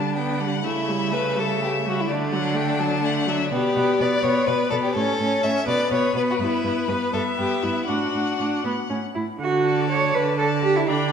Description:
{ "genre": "quick classical-period movement for string quartet", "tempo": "83 BPM (dotted quarters)", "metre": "6/8", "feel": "rubato", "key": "D major", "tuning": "A4 = 440 Hz", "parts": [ { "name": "rich violin", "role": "melody", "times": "0.0-11.1 s", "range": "B4 to B5", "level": "-28 LUFS", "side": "left 7 dB", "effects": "none" }, { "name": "rich violin", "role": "second line", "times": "0.0-11.1 s", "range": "D4 to G5", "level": "-25 LUFS", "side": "left 2 dB", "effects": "none" }, { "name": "warm viola", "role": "accompaniment", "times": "0.0-11.1 s", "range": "D3 to E4", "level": "-25 LUFS", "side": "right 2 dB", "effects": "none" }, { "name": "rich cello", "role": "bass", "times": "0.0-11.1 s", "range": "G2 to C#5", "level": "-26 LUFS", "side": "right 3 dB", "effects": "none" } ], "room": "wet scoring stage reverb, RT60 1.8 s", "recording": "minimal, uncompressed stereo recording", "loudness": "-20 LUFS", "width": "side -7 dB against mid", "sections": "0.0-9.4 A section; 9.4-11.1 A section", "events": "none", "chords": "0.0 G/D; 0.6 A7/C#; 2.1 D; 3.5 G/B; 5.0 A; 5.7 Bmadd9; 6.4 Em/G; 7.9 D; 8.7 A; 9.4 D" }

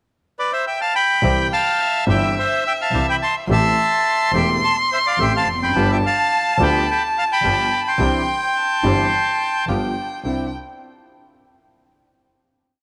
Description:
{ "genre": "tango", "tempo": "107 BPM", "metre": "4/4", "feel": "rubato", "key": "C major", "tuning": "A4 = 440 Hz", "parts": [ { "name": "bandoneon", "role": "melody", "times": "0.4-9.7 s", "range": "B4 to C6", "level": "-21 LUFS", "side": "equal", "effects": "none" }, { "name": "warm violin", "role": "second line", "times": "1.2-10.5 s", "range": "E5 to C6", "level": "-26 LUFS", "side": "equal", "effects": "none" }, { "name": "warm upright piano", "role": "accompaniment", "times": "1.2-10.5 s", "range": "E1 to G4", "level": "-27 LUFS", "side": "equal", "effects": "none" }, { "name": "bandoneon", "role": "stabs", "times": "1.2-10.5 s", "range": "B3 to A4", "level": "-34 LUFS", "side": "equal", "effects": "none" }, { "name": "clear double bass", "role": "bass", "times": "1.2-10.5 s", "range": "E1 to D2", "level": "-25 LUFS", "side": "equal", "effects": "none" } ], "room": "light reverb, small room ambience", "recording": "none", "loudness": "-19 LUFS", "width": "mono", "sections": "0.0-1.2 pickup bar; 1.2-10.2 A section; 10.2-12.5 final chord", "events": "none", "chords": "0.0 C; 3.5 Am7; 5.7 G7; 8.0 Cadd9; 9.7 G7; 10.2 Cadd9" }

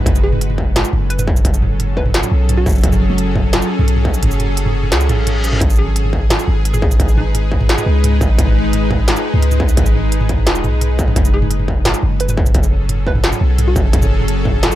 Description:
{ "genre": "half-time drum and bass", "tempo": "173 BPM", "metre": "4/4", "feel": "half-time", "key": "unclear", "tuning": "A4 = 441 Hz", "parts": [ { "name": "bowed-like drone", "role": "sustained chords", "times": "0.0-14.8 s", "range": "F#3 to B4", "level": "-21 LUFS", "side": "left 1 dB", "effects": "built-in reverb, sidechain pumping" }, { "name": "long sustained 808-style bass", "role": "bass", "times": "0.0-14.7 s", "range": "D#1 to C#2", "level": "-16 LUFS", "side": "equal", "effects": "tube saturation" }, { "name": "electronic kick drum", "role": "drums", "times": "0.1-14.5 s", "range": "none", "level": "-16 LUFS", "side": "equal", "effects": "distortion" }, { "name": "industrial drum kit", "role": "drums", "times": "0.1-14.8 s", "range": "hi-hat, shaker, snare drum, toms", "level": "-19 LUFS", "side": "right 1 dB", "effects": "none" }, { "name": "hollow square pluck", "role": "melody", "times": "0.2-2.8, 5.8-7.4, 11.3-13.9 s", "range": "D#4 to B4", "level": "-27 LUFS", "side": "equal", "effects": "chorus, analog delay" }, { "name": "reverse cymbal", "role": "sound effects", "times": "5.1-5.6 s", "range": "none", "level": "-27 LUFS", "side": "left 1 dB", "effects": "none" } ], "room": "digital ambience", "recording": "dry, gritty hardware recording", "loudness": "-12 LUFS", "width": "side -14 dB against mid", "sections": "0.0-14.8 A section", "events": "kick drops out 4.2-5.6; reverse cymbal 5.1-5.6", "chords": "0.1 F#m; 5.6 G#m; 11.2 F#m" }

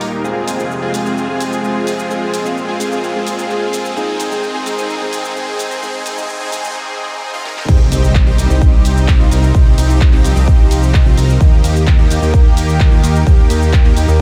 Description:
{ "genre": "EDM, festival progressive house", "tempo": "129 BPM", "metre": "4/4", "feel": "straight", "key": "C minor", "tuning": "A4 = 441 Hz", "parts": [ { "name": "lush unison pad", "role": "sustained chords", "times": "0.0-14.2 s", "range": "Eb2 to G4", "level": "-26 LUFS", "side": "equal", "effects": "chorus, sidechain pumping" }, { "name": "supersaw chords", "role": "riff", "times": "0.0-14.2 s", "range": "Bb3 to Bb4", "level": "-23 LUFS", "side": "equal", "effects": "analog chorus, sidechain pumping, low-pass filter, analog delay" }, { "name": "big-room dance drum kit", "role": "drums", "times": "0.0-14.2 s", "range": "crash cymbal, handclaps, hi-hat, shaker, snare drum", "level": "-29 LUFS", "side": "equal", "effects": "studio reverb" }, { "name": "riser, noise sweep and impact", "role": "sound effects", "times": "0.0-9.5 s", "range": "none", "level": "-27 LUFS", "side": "equal", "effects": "none" }, { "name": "dark grand piano", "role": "accompaniment", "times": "0.2-6.7 s", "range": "Ab2 to Ab4", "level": "-28 LUFS", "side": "equal", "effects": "sidechain pumping, analog delay" }, { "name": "fat analog bass", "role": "bass", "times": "7.7-14.2 s", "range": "C2 to Eb2", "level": "-16 LUFS", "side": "equal", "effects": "tube saturation, sidechain pumping" }, { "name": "electronic kick drum", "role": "drums", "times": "7.7-14.2 s", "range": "none", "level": "-12 LUFS", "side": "equal", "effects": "studio reverb" } ], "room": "moderate huge ambient reverb, RT60 5.0 s", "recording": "dreamy mix soaked in reverb, high-pass filter", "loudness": "-14 LUFS", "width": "mono", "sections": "0.0-7.7 A section; 7.7-14.2 B section", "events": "build-up 0.0-7.7; riser 0.0-6.8; filter sweep on supersaw synth 0.0-7.7; filter sweep 0.0-7.7; noise sweep 5.8-7.7; drum fill 7.5; drop 7.7-14.2; impact 7.7-9.5", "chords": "0.2 Fm; 4.0 Ab; 7.7 Cm; 11.4 Eb" }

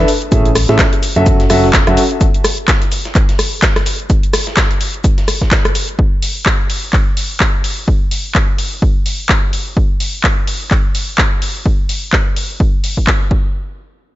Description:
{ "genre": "piano house", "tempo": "127 BPM", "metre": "4/4", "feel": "swing 58% on 16ths", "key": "unclear", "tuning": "A4 = 440 Hz", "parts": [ { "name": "clear concert grand piano", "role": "riff", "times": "0.0-2.0 s", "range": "A2 to E5", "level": "-14 LUFS", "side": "equal", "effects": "sidechain pumping, ping-pong delay" }, { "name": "solid FM bass", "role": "bass", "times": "0.0-2.0 s", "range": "F#1 to A1", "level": "-16 LUFS", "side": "equal", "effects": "sidechain pumping" }, { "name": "electronic shaker and snare drum", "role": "drums", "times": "0.1-5.9 s", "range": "none", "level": "-26 LUFS", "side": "equal", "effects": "high-pass filter on snare, sidechain pumping on perc, high-pass filter on perc, high-pass filter on room" }, { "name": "house drum kit", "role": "drums", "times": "0.1-13.2 s", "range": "handclaps, hi-hat, rim click", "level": "-17 LUFS", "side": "equal", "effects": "none" }, { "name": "electronic kick drum", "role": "drums", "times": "0.3-13.4 s", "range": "none", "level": "-14 LUFS", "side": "equal", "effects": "none" } ], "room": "digital ambience", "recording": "nothing above 7.7 kHz", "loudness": "-12 LUFS", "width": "side -15 dB against mid", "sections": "0.0-13.5 A section", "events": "none", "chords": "0.1 Amaj7; 1.0 F#m7; 2.2 N.C." }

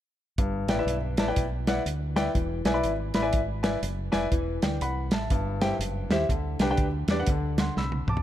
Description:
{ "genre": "uptempo gospel", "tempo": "122 BPM", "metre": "4/4", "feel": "swing 62% on 8ths", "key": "G major", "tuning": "A4 = 440 Hz", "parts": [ { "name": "warm grand piano", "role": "accompaniment", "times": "0.4-8.2 s", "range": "G2 to E6", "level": "-28 LUFS", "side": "left 2 dB", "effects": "none" }, { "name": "fingered electric bass", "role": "bass", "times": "0.4-8.2 s", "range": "E1 to E2", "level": "-31 LUFS", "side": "equal", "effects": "none" }, { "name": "warm soul drum kit", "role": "drums", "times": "0.4-8.2 s", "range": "hi-hat, kick drum, snare drum, toms", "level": "-28 LUFS", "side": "right 1 dB", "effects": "none" } ], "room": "light reverb, studio ambience", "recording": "dark, warm production", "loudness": "-24 LUFS", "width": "side -12 dB against mid", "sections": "0.4-8.2 A section", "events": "drum fill 7.8-8.2", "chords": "0.4 G6; 2.4 E7; 4.3 Am/E; 5.3 C/G; 6.3 G; 7.3 D13" }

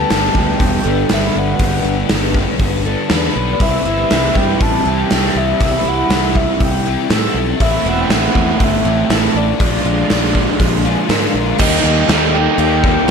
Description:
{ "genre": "rock, shoegaze and dream pop", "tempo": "120 BPM", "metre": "4/4", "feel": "straight", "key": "G major", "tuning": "A4 = 440 Hz", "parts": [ { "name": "soft octave-layered synth lead", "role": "melody", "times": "0.0-13.1 s", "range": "D5 to A5", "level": "-21 LUFS", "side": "left 4 dB", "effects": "chorus, ping-pong delay" }, { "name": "picked twelve-string acoustic guitar", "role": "arpeggios", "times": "0.0-13.1 s", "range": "E4 to B4", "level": "-25 LUFS", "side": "right 4 dB", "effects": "lush chorus, ping-pong delay" }, { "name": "crunchy overdriven guitar", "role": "riff", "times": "0.0-13.1 s", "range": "G2 to G4", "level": "-20 LUFS", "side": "right 10 dB", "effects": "reverse reverb" }, { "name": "raw garage guitar", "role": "riff", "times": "0.0-13.1 s", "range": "G2 to F4", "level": "-20 LUFS", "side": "left 11 dB", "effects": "overdrive, ensemble chorus" }, { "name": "fuzz fingered electric bass", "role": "bass", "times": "0.0-13.1 s", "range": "E1 to A2", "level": "-20 LUFS", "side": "equal", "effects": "overdrive" }, { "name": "gated 80s drum kit", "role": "drums", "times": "0.1-13.1 s", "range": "crash cymbal, hi-hat, kick drum, snare drum", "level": "-17 LUFS", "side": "equal", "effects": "none" } ], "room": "moderate plate reverb, RT60 2.7 s", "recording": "dreamy mix soaked in reverb", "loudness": "-12 LUFS", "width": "side -6 dB against mid", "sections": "0.0-11.6 A section; 11.6-13.1 B section", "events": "none", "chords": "0.0 Gadd9; 3.6 Cmaj7; 7.6 Am7; 9.6 Bb7; 11.6 Eb" }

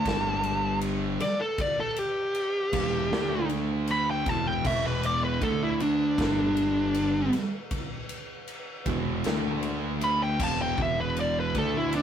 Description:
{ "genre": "stoner and doom metal", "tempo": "78 BPM", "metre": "4/4", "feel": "straight", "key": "unclear", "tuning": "A4 = 442 Hz", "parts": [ { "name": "fuzz lead guitar", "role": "melody", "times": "0.0-12.0 s", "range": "D4 to B5", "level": "-26 LUFS", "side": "equal", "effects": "distortion" }, { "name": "crunchy overdriven guitar", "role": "riff", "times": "0.0-12.0 s", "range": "E2 to D4", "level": "-37 LUFS", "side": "equal", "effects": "none" }, { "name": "thick fuzz guitar", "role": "riff", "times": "0.0-12.0 s", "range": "E2 to D4", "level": "-36 LUFS", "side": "left 8 dB", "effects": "distortion" }, { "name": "thick fuzz guitar", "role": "riff", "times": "0.0-12.0 s", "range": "E2 to D4", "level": "-32 LUFS", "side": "right 6 dB", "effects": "distortion" }, { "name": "overdriven fingered electric bass", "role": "bass", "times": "0.1-12.0 s", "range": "E1 to D2", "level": "-33 LUFS", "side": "equal", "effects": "none" }, { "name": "big rock drum kit", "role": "drums", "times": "0.1-12.0 s", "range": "crash cymbal, kick drum, ride cymbal, snare drum", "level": "-34 LUFS", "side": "equal", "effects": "none" } ], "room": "light reverb", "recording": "rough rehearsal-room recording", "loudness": "-25 LUFS", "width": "side -9 dB against mid", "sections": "0.0-12.0 A section", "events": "lead electric guitar solo 0.0-12.0", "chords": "0.1 G5; 2.7 Em; 3.1 D5; 4.3 E5; 5.4 D5; 6.2 G5; 8.9 E5; 9.2 D5; 10.4 E5" }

